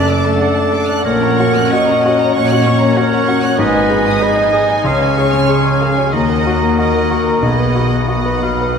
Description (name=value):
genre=classical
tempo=83-97 BPM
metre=4/4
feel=rubato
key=F# major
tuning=A4 = 437 Hz
part: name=clear grand piano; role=melody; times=0.0-8.8 s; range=B1 to D#5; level=-15 LUFS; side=left 2 dB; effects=none
part: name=rich studio violin section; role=melody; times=0.0-8.8 s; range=F#5 to A5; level=-28 LUFS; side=equal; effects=none
part: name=clear oboe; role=second line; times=0.0-8.8 s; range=C#5 to E#5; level=-23 LUFS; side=right 1 dB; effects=none
part: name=mellow clarinet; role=second line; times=0.0-8.8 s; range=F#4 to D#5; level=-18 LUFS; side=equal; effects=none
part: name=mellow large flute ensemble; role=second line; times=0.0-8.8 s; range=F#5 to B5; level=-25 LUFS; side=right 1 dB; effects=none
part: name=rich studio violin section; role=second line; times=0.0-8.8 s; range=D#5 to F#6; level=-23 LUFS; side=right 1 dB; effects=none
part: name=warm studio viola section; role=accompaniment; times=0.0-8.8 s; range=A#3 to D#4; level=-22 LUFS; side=left 2 dB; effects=none
part: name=dark studio cello section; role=bass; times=0.0-8.8 s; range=F#2 to D#3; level=-25 LUFS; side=right 4 dB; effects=none
part: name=rich studio double bass section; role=bass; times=0.0-8.8 s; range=F#1 to D#2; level=-24 LUFS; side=right 3 dB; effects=none
room=wet church reverb, RT60 3.7 s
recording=recorded in a church or concert hall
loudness=-11 LUFS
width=side -6 dB against mid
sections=0.0-8.8 A section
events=none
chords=0.0 D/F#; 1.1 F#/A#; 3.6 G#m; 4.9 C#; 6.1 D#m; 7.4 B6